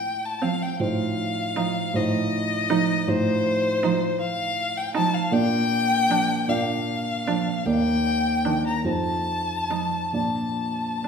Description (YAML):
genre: classical, slow romantic movement for piano quartet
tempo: 44-54 BPM (dotted quarters)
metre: 12/8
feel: rubato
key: unclear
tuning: A4 = 440 Hz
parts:
  - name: rich violin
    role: melody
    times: 0.0-11.1 s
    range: C5 to Bb5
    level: -25 LUFS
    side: left 3 dB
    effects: none
  - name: dark grand piano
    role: accompaniment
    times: 0.0-11.1 s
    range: Eb2 to D5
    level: -25 LUFS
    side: right 1 dB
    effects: none
  - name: rich cello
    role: second line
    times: 0.4-11.1 s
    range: Eb3 to F3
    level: -28 LUFS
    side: right 7 dB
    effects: none
  - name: rich viola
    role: accompaniment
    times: 0.4-11.1 s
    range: C4 to Eb4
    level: -30 LUFS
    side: right 4 dB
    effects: none
room: wet recital hall reverb, RT60 1.4 s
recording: heard from further back in the room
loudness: -21 LUFS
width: side -6 dB against mid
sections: 0.0-11.1 A section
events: none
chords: 0.0 F/A; 0.8 F7/A; 5.3 Bb; 7.7 Ebmaj7; 8.9 F7; 10.1 Bb